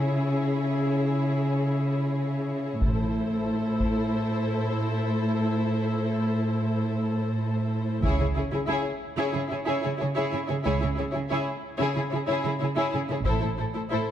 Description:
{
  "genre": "cinematic, epic orchestral film score",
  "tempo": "92 BPM",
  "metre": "4/4",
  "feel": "straight",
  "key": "C# harmonic minor",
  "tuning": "A4 = 441 Hz",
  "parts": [
    { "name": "dark symphonic violin section", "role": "melody", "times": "0.0-14.1 s", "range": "C5 to C#5", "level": "-35 LUFS", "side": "left 4 dB", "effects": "none" },
    { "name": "dark symphonic violin section", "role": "second line", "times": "0.0-14.1 s", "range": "G#4 to A4", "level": "-34 LUFS", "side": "left 3 dB", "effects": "none" },
    { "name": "warm symphonic viola section", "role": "accompaniment", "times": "0.0-14.1 s", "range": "E4", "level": "-33 LUFS", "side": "right 1 dB", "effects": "none" },
    { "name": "warm studio cello section", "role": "bass", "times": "0.0-14.0 s", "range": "A2 to C#3", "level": "-27 LUFS", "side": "right 1 dB", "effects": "none" },
    { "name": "warm symphonic double bass section", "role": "bass", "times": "2.8-3.4, 8.0-13.4 s", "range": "A1 to C#2", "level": "-31 LUFS", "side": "right 3 dB", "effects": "none" },
    { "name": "solo taiko drums", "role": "drums", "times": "2.8-4.1, 8.0-9.3, 13.3-14.1 s", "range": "none", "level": "-30 LUFS", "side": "equal", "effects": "none" }
  ],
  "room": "moderate concert hall reverb, RT60 2.3 s",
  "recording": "dark, warm production",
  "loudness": "-24 LUFS",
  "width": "side -11 dB against mid",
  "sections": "0.0-14.1 A section",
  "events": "build-up 0.0-14.1",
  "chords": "0.0 C#m; 2.8 Am; 8.0 C#m; 13.3 Am",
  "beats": "| 0.21 0.87 1.52 2.17 | 2.82 3.47 4.13 4.78 | 5.43 6.08 6.74 7.39 | 8.04 8.69 9.34 10.00 | 10.65 11.30 11.95 12.61 | 13.26 13.91"
}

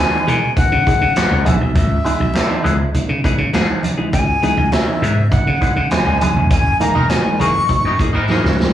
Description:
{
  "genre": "funk",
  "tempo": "101 BPM",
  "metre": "4/4",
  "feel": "straight",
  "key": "C# dorian",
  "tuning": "A4 = 440 Hz",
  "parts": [
    { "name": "breathy bright jazz flute", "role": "melody", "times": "0.0-8.0 s", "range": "E5 to C#6", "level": "-19 LUFS", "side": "left 2 dB", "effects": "slapback echo" },
    { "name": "semi-hollow electric guitar", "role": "accompaniment", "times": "0.1-8.6 s", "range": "E3 to A#4", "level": "-23 LUFS", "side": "left 4 dB", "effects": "phaser, slapback echo" },
    { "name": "reed electric piano", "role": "stabs", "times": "0.1-8.7 s", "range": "C#3 to D#4", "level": "-23 LUFS", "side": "right 4 dB", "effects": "overdrive, fast tremolo, slapback echo" },
    { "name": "slap bass", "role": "bass", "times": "0.3-8.7 s", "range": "E1 to C#3", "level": "-17 LUFS", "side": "equal", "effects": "none" },
    { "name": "vintage drum kit", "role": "drums", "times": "0.3-8.7 s", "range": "handclaps, hi-hat, kick drum, snare drum", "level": "-19 LUFS", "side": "equal", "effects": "none" },
    { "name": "congas", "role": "percussion", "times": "0.6-8.7 s", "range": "none", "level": "-24 LUFS", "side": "right 3 dB", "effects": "slapback echo" },
    { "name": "bright horn section", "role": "second line", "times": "7.0-8.6 s", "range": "E3 to A#4", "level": "-22 LUFS", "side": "right 1 dB", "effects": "slapback echo" }
  ],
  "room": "light reverb",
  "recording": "live gig heard through the venue's PA, club reverb, vinyl crackle, small room ambience",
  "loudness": "-13 LUFS",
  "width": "side -11 dB against mid",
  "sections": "0.0-8.7 A section",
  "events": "band accent 6.5-8.7; drum fill 8.3-8.7",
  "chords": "0.0 C#m7; 6.5 F#13",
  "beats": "0.57 1.16 | 1.76 2.35 2.94 3.54 | 4.13 4.73 5.32 5.91 | 6.51 7.10 7.70 8.29"
}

